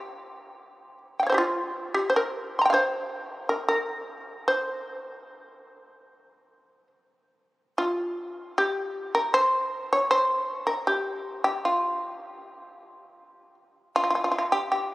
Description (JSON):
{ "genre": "japanese traditional", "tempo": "77 BPM", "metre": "4/4", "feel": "rubato", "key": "C in sen", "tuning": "A4 = 440 Hz", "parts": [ { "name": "shamisen", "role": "solo", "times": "0.0-14.9 s", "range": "F4 to C6", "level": "-24 LUFS", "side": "equal", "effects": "none" } ], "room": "wet cathedral reverb, RT60 4.3 s", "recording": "recorded on a phone in the room, studio ambience", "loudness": "-24 LUFS", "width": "side -18 dB against mid", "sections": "0.0-7.7 A section; 7.7-14.9 B section", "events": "none", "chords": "none" }